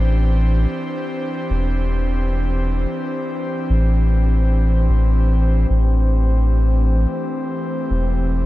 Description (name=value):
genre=ambient dub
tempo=75 BPM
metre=4/4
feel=straight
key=unclear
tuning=A4 = 440 Hz
part: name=airy breathy pad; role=sustained chords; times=0.0-8.5 s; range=E3 to C5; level=-23 LUFS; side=left 1 dB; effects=chorus
part: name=soft dub sub bass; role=bass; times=0.0-8.5 s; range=E1 to A1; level=-16 LUFS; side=equal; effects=tube saturation
room=little or no reverb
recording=none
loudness=-16 LUFS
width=side -16 dB against mid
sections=0.0-8.5 A section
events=none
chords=0.0 Cadd9